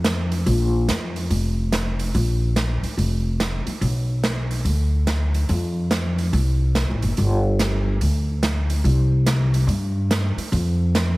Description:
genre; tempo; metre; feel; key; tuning
jazz, big band swing; 143 BPM; 4/4; swing 64% on 8ths; unclear; A4 = 439 Hz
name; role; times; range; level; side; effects
upright bass; bass; 0.0-11.2 s; F1 to G2; -20 LUFS; equal; none
swinging big-band drum kit; drums; 0.0-11.1 s; hi-hat, snare drum; -26 LUFS; right 2 dB; none
room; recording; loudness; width
light reverb; heavily compressed radio sound, multiband compression; -19 LUFS; side -21 dB against mid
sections
0.0-11.2 A section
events
none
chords
none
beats
0.05 | 0.47 0.89 1.30 1.73 | 2.14 2.56 2.98 3.40 | 3.82 4.24 4.66 5.08 | 5.50 5.92 6.34 6.76 | 7.18 7.60 8.02 8.44 | 8.85 9.27 9.69 10.11 | 10.53 10.95

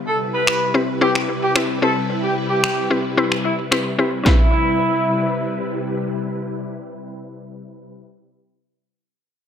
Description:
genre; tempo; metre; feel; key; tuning
dance-pop; 111 BPM; 4/4; straight; C major; A4 = 439 Hz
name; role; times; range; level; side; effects
string machine, violas; sustained chords; 0.0-7.9 s; C3 to B4; -25 LUFS; left 1 dB; ensemble chorus, sidechain pumping, low-pass filter
mellow horn section; melody; 0.1-5.8 s; E4 to B4; -21 LUFS; equal; sidechain pumping, low-pass filter, analog delay
punchy analog drum machine; drums; 0.5-4.4 s; finger snaps, kick drum, snare drum; -18 LUFS; equal; none
mallet-like synth pluck; accompaniment; 0.7-8.0 s; C4 to B4; -20 LUFS; left 2 dB; chorus, sidechain pumping, low-pass filter, analog delay
room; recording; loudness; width
moderate plate reverb, RT60 1.2 s, digital ambience; echo-heavy mix; -17 LUFS; side -8 dB against mid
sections
0.0-4.3 A section; 4.3-8.6 B section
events
none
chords
0.0 Cmaj7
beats
0.47 1.01 1.56 | 2.10 2.64 3.18 3.72 | 4.26 4.80 5.34 5.88 | 6.42 6.96 7.50

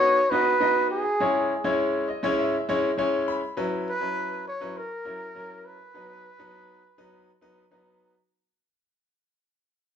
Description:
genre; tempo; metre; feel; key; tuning
soul; 101 BPM; 4/4; straight; B major; A4 = 440 Hz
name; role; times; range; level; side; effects
breathy trumpet; melody; 0.0-7.7 s; G#4 to C#5; -24 LUFS; equal; none
bright grand piano; accompaniment; 0.0-8.1 s; F#3 to B5; -26 LUFS; left 1 dB; none
room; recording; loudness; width
wet large studio reverb, RT60 0.9 s; band playing live in one room; -23 LUFS; side -8 dB against mid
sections
0.0-8.3 A section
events
fade-out 0.0-8.3; grand piano fill 1.8-3.6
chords
0.0 B; 1.2 C#m; 3.6 F#7sus4; 4.8 F#7; 5.9 B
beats
0.03 0.62 | 1.21 1.80 2.39 2.98 | 3.57 4.17 4.76 5.35 | 5.94 6.54 7.13 7.72

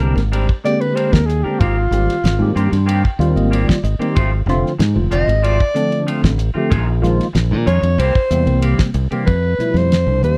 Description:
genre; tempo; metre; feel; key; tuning
electric jazz fusion; 94 BPM; 4/4; straight; unclear; A4 = 439 Hz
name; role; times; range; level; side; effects
tine electric piano; accompaniment; 0.0-10.4 s; B2 to C6; -22 LUFS; equal; phaser
clean electric guitar; stabs; 0.0-9.3 s; Eb3 to Bb4; -28 LUFS; equal; subtle chorus, slapback echo
modern bright fingered electric bass; bass; 0.0-10.4 s; F1 to Bb2; -18 LUFS; equal; none
damped 70s drum kit; drums; 0.0-10.4 s; hi-hat, kick drum, ride cymbal, snare drum; -20 LUFS; equal; none
breathy soprano saxophone; melody; 0.7-10.4 s; F4 to Eb5; -21 LUFS; equal; none
room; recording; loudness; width
little or no reverb; dry, close 1970s-style studio recording; -16 LUFS; mono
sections
0.0-9.3 A section; 9.3-10.4 B section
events
soprano saxophone solo 0.0-9.3; tine electric piano fill 2.2-4.2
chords
0.0 Abmaj9#11; 1.6 Cm7/Ab; 4.2 Dm7; 6.7 Bb7sus4; 8.0 C7; 9.3 Fmaj9#11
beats
0.32 0.96 | 1.60 2.24 2.88 3.52 | 4.16 4.80 5.44 6.08 | 6.71 7.35 7.99 8.63 | 9.27 9.91

